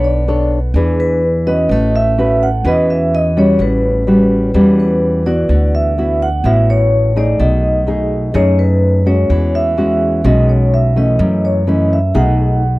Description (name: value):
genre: bossa nova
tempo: 126 BPM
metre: 4/4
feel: straight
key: E major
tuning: A4 = 442 Hz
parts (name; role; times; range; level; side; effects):
- vibraphone with medium mallets; melody; 0.0-12.8 s; B4 to F#5; -17 LUFS; equal; none
- nylon-string guitar; accompaniment; 0.0-12.8 s; F#2 to C#5; -15 LUFS; equal; none
- upright bass; bass; 0.0-12.8 s; A1 to F#2; -15 LUFS; equal; none
room: light reverb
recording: dry, close 1970s-style studio recording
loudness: -11 LUFS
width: side -20 dB against mid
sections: 0.0-12.8 A section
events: none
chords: 0.0 Bm9; 0.7 E7; 1.7 A13; 5.5 D69; 7.4 B13; 9.3 E69; 11.2 F#m7; 12.2 B6